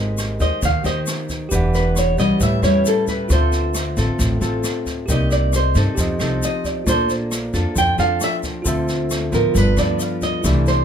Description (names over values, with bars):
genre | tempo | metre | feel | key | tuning
bossa nova | 134 BPM | 4/4 | straight | unclear | A4 = 440 Hz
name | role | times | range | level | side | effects
bell-like tine electric piano | accompaniment | 0.0-10.8 s | E4 to F#5 | -28 LUFS | right 3 dB | none
nylon-string guitar | accompaniment | 0.0-10.8 s | G2 to C5 | -22 LUFS | left 1 dB | none
upright bass | bass | 0.0-10.8 s | E1 to G2 | -20 LUFS | equal | none
jazz brush drum kit | drums | 0.2-10.7 s | kick drum, rim click, snare drum | -26 LUFS | equal | none
egg shaker | percussion | 0.2-10.8 s | none | -30 LUFS | left 6 dB | none
nylon-string guitar | melody | 0.4-10.8 s | A4 to G5 | -21 LUFS | right 1 dB | none
room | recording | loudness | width
little or no reverb | none | -17 LUFS | side -8 dB against mid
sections
0.0-10.8 A section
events
nylon-string guitar solo 0.0-10.8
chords
0.0 Abmaj7; 1.5 Em7; 2.4 A7; 3.3 Dm7; 5.1 Cm7; 6.0 F7; 6.9 Bbmaj7; 8.7 Dm7; 9.5 G7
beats
0.18 0.62 1.07 | 1.51 1.96 2.41 2.85 | 3.30 3.75 4.19 4.64 | 5.08 5.53 5.97 6.42 | 6.87 7.31 7.76 8.21 | 8.65 9.10 9.54 9.99 | 10.44